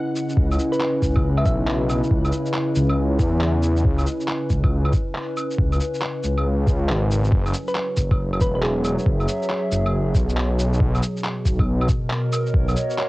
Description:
future garage; 138 BPM; 4/4; swing 64% on 16ths; C# dorian; A4 = 440 Hz
warbly tape-like pad; sustained chords; 0.0-13.1 s; B2 to E5; -25 LUFS; equal; chorus, built-in reverb, vintage 12-bit sampler grit, sidechain pumping, cassette tape, plate reverb
electronic shaker, claves, handclaps and cabasa; drums; 0.2-13.1 s; -29 LUFS; equal; cassette tape
swelling detuned saw bass; bass; 0.4-12.7 s; E1 to E2; -21 LUFS; equal; tube saturation, sidechain pumping
electronic kick drum; drums; 0.4-12.7 s; -20 LUFS; equal; cassette tape
thumb-piano-like synth pluck; melody; 0.7-1.5, 7.7-9.1 s; G#4 to E5; -27 LUFS; right 1 dB; chorus, cassette tape, analog delay
light reverb; home recording on cassette; -19 LUFS; side -20 dB against mid
0.4-13.1 A section
0.4 C#m7; 7.3 F#7sus4; 10.8 Bmaj7

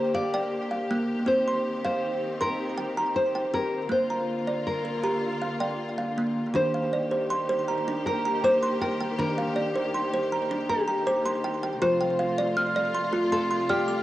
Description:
world meditative, meditative tuned percussion; 159 BPM (eighths); 7/8; straight; A4 = 440 Hz
nylon-string guitar; melody; 0.0-14.0 s; G4 to D5; -28 LUFS; left 1 dB; cassette tape, shimmer reverb, tape echo
warm studio string section; sustained chords; 0.0-14.0 s; C3 to G4; -31 LUFS; left 2 dB; cassette tape, shimmer reverb
kalimba; arpeggios; 0.0-14.0 s; Eb3 to F6; -27 LUFS; right 2 dB; cassette tape, shimmer reverb, tape echo
wet spring reverb, RT60 1.1 s; home recording on cassette; -24 LUFS; side -14 dB against mid
0.0-6.5 A section; 6.5-14.0 B section
0.0 Bb; 1.3 Cm; 3.9 Bb; 6.5 Eb; 11.8 F

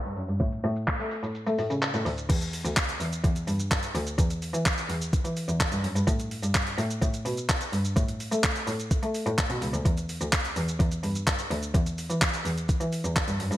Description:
dance-pop; 127 BPM; 4/4; straight; E dorian; A4 = 440 Hz
clean 12-bit digital drum machine; drums; 0.0-13.6 s; crash cymbal, handclaps, hi-hat, kick drum, shaker; -27 LUFS; equal; overdrive, gated reverb
rich cello; bass; 0.1-13.6 s; C#2 to A3; -28 LUFS; equal; sidechain pumping
little or no reverb; bright 1980s-style digital production, low-pass filter; -25 LUFS; side -14 dB against mid
0.0-2.3 A section; 2.3-13.6 B section
filter sweep 0.0-2.3; kick muted 1.4-2.3

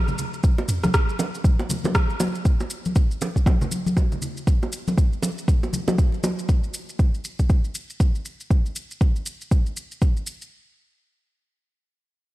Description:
afro house; 119 BPM; 4/4; swing 60% on 16ths
deep house drum kit; drums; 0.1-10.5 s; rim click, shaker, toms; -30 LUFS; equal; studio reverb
congas; percussion; 0.1-6.4 s; -28 LUFS; left 2 dB
electronic kick drum; drums; 0.4-10.1 s; -19 LUFS; equal; studio reverb
bongos; percussion; 0.6-6.4 s; -29 LUFS; right 2 dB
little or no reverb; dark, warm production; -20 LUFS; side -17 dB against mid
0.0-10.5 A section

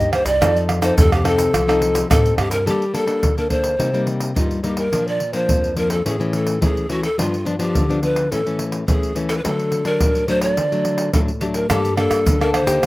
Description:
samba and choro; 106 BPM; 4/4; straight; G minor; A4 = 440 Hz
breathy hollow large pan pipes; melody; 0.0-12.9 s; F4 to Eb5; -21 LUFS; equal; slapback echo
nylon-string guitar; accompaniment; 0.0-12.9 s; F2 to A4; -21 LUFS; left 2 dB
upright bass; bass; 0.0-2.6, 11.7-12.9 s; C2 to A2; -22 LUFS; equal
tube shaker, pandeiro, tamborim and surdo; percussion; 0.0-12.9 s; -21 LUFS; right 1 dB
little or no reverb; recorded outdoors, with no room sound; -16 LUFS; side -18 dB against mid
0.0-2.7 A section; 2.7-11.7 B section; 11.7-12.9 C section
0.4 F7; 2.7 Gmadd9; 3.8 Cm7; 4.9 Bb; 6.1 A; 7.2 G7; 8.3 A; 9.4 D; 11.7 Gmadd9

